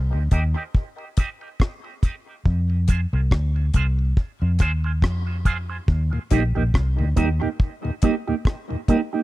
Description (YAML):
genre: dub reggae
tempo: 70 BPM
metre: 4/4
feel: swing 57% on 16ths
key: unclear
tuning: A4 = 441 Hz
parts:
  - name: vintage muted fingered electric bass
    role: bass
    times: 0.0-7.4 s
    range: Bb1 to F2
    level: -21 LUFS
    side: equal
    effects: none
  - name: mellow tonewheel organ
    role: accompaniment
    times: 0.1-9.0 s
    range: Eb2 to G4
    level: -30 LUFS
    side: left 2 dB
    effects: slow rotary speaker, high-pass filter, dub echo
  - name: electric guitar with an envelope filter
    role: accompaniment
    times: 0.3-9.2 s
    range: Bb3 to C5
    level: -26 LUFS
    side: right 6 dB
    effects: phaser, high-pass filter, dub echo
  - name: deep reggae drum kit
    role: drums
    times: 0.3-9.1 s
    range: hi-hat, kick drum, rim click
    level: -20 LUFS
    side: equal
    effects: none
room: small room ambience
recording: dry, close 1970s-style studio recording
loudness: -20 LUFS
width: side -17 dB against mid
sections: 0.0-9.2 A section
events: none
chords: 0.0 Eb; 2.5 Fm; 5.9 Eb